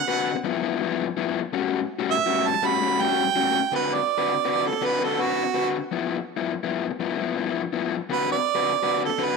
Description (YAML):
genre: blues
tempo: 110 BPM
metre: 4/4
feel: swing 67% on 8ths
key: D mixolydian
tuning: A4 = 440 Hz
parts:
  - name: bright harmonica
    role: melody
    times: 0.0-9.4 s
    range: F#4 to B5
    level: -23 LUFS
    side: right 11 dB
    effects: overdrive
  - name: raw garage guitar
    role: riff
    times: 0.1-9.4 s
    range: G2 to B4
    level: -25 LUFS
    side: left 10 dB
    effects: overdrive
room: moderate plate reverb, RT60 2.5 s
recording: 1960s-style stereo with parts hard left and right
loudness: -22 LUFS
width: side -4 dB against mid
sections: 0.0-3.7 A section; 3.7-9.4 B section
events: harmonica solo 0.0-3.7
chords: 0.5 G6; 1.5 A6; 3.7 D6; 5.9 G6; 8.1 D6